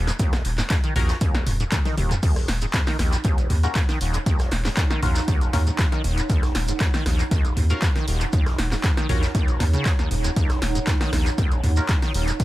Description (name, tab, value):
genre	acid house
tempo	118 BPM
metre	4/4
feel	straight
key	Eb minor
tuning	A4 = 440 Hz
part	liquid acid bass	riff	0.0-12.4 s	Eb1 to Eb3	-28 LUFS	equal	overdrive, analog chorus, sidechain pumping, dub echo
part	saturated sub bass	bass	0.0-12.3 s	Eb1 to Eb2	-23 LUFS	equal	tube saturation, sidechain pumping
part	punchy analog drum machine	drums	0.1-12.4 s	crash cymbal, handclaps, hi-hat, rim click, snare drum, toms	-27 LUFS	equal	dub echo
part	vintage drum kit	drums	0.1-12.4 s	hi-hat, snare drum	-42 LUFS	right 1 dB	none
part	shekere	percussion	0.1-12.4 s	none	-37 LUFS	right 2 dB	none
part	electronic kick drum	drums	0.2-12.4 s	none	-22 LUFS	equal	none
part	band-passed chord stab	stabs	1.0-11.9 s	Db4 to Bb4	-34 LUFS	left 2 dB	none
part	granular cloud pad	texture	3.1-12.4 s	Eb4 to Bb5	-33 LUFS	right 3 dB	built-in reverb, sidechain pumping
room	studio reverb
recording	echo-heavy mix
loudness	-19 LUFS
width	side -16 dB against mid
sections	0.0-2.2 A section; 2.2-12.4 A section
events	drop 0.0-2.2, 2.2-12.4; drum fill 1.7-2.2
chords	0.0 Ebm7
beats	| 0.20 0.70 1.21 1.72 | 2.23 2.74 3.25 3.75 | 4.26 4.77 5.28 5.79 | 6.30 6.80 7.31 7.82 | 8.33 8.84 9.35 9.86 | 10.37 10.87 11.38 11.89 | 12.40